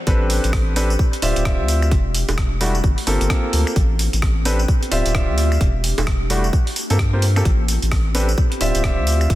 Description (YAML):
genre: UK garage, two-step garage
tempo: 130 BPM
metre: 4/4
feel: swing 61% on 16ths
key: A minor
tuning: A4 = 440 Hz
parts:
  - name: ethereal airy pad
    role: sustained chords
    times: 0.2-9.4 s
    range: A3 to E5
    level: -30 LUFS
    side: equal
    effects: ensemble chorus, built-in reverb, sidechain pumping
  - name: clear grand piano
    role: stabs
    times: 0.1-9.3 s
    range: G3 to E5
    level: -23 LUFS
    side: equal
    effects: ping-pong delay
  - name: saturated sub bass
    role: bass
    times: 0.1-9.4 s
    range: D1 to G2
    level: -19 LUFS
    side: equal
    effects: none
  - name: breakbeat sampler-style drum kit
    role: drums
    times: 0.1-9.4 s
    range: bongos, finger snaps, hi-hat, rim click, tambourine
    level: -25 LUFS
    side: right 1 dB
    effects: none
  - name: electronic kick drum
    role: drums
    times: 0.1-9.4 s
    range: none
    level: -19 LUFS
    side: equal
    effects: high-pass filter on kick
room: little or no reverb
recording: dense, heavily limited modern master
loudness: -16 LUFS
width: side -15 dB against mid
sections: 0.1-9.4 A section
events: drop 0.1-9.4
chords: 0.1 Am11; 1.0 Dm11; 1.9 Em11; 2.8 Gm11; 3.8 Am11; 4.7 Dm11; 5.6 Em11; 6.5 Gm11; 7.5 Am11; 8.4 Dm11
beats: | 0.07 0.53 0.99 1.45 | 1.92 2.38 2.84 3.30 | 3.76 4.22 4.68 5.15 | 5.61 6.07 6.53 6.99 | 7.45 7.92 8.38 8.84 | 9.30